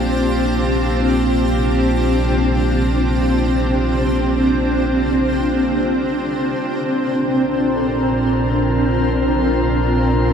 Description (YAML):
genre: ambient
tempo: free time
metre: none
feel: none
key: Bb major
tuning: A4 = 442 Hz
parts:
  - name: granular cloud pad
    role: sustained chords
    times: 0.0-10.3 s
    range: C4 to C5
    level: -17 LUFS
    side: equal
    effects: built-in reverb, shimmer reverb
  - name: round analog bass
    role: bass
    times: 0.0-10.3 s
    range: Bb1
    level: -22 LUFS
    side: equal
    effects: none
  - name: organ-like drone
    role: drone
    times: 0.0-10.3 s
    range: Bb2 to F4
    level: -24 LUFS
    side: equal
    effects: ensemble chorus, built-in reverb
  - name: drifting glass-harmonics texture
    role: texture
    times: 0.0-10.3 s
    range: Bb4 to A5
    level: -30 LUFS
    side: left 4 dB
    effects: chorus, built-in reverb, shimmer reverb
  - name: muted felt-like synth keys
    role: arpeggios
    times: 7.4-10.3 s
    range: A4 to C5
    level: -37 LUFS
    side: left 2 dB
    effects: none
room: wet cathedral reverb, RT60 4.8 s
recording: in a vast, echoing space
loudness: -15 LUFS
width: side -7 dB against mid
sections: 0.0-6.6 A section; 6.6-10.3 B section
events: none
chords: 0.0 Bbmaj9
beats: free time